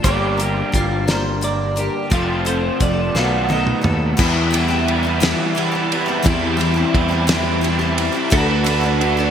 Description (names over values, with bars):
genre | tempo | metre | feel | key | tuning
folk rock and heartland rock | 58 BPM (dotted quarters) | 6/8 | straight | E minor from 4.2 s | A4 = 441 Hz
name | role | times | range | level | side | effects
twelve-string electric guitar | second line | 0.0-3.8, 8.3-9.3 s | D#4 to D5 | -24 LUFS | right 1 dB | spring reverb
picked twelve-string acoustic guitar | accompaniment | 0.0-9.3 s | G2 to Bb4 | -22 LUFS | left 4 dB | analog chorus
crunchy overdriven guitar | riff | 0.0-9.3 s | E2 to G4 | -21 LUFS | right 2 dB | ensemble chorus
picked electric bass | bass | 0.0-9.3 s | F1 to E2 | -21 LUFS | equal | none
damped 70s drum kit | drums | 0.0-9.2 s | crash cymbal, hi-hat, kick drum, ride cymbal, snare drum, toms | -21 LUFS | right 1 dB | gated reverb
room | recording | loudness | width
moderate plate reverb, RT60 2.8 s | bright 1980s-style digital production | -16 LUFS | side -8 dB against mid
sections
0.0-4.2 A section; 4.2-9.3 B section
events
drum fill 3.2-4.2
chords
0.0 Gm; 2.1 F; 3.2 B7; 4.2 Em; 6.3 C/E; 8.3 D